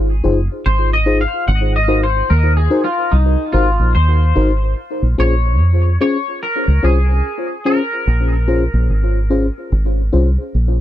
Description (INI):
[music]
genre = lovers rock reggae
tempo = 73 BPM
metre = 4/4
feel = swing 61% on 16ths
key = Bb minor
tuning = A4 = 439 Hz
[part]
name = deep dub fingered electric bass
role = bass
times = 0.0-10.8 s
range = Gb1 to F2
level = -14 LUFS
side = equal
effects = none
[part]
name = mellow FM electric piano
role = accompaniment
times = 0.2-10.4 s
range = Db4 to C5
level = -20 LUFS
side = left 3 dB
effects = chorus, tremolo, tape echo
[part]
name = twangy electric guitar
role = melody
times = 0.7-9.3 s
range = Eb4 to Gb5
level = -20 LUFS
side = left 1 dB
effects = analog chorus, tape echo
[sound]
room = little or no reverb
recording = dry, close 1970s-style studio recording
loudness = -13 LUFS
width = side -12 dB against mid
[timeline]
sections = 0.0-4.8 A section; 4.8-10.8 B section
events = clean electric guitar solo 0.0-4.8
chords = 0.0 Fm7; 1.5 Ab9; 4.8 Bbm7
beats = 0.66 | 1.48 2.30 3.12 3.95 | 4.77 5.59 6.42 7.24 | 8.07 8.89 9.72 10.54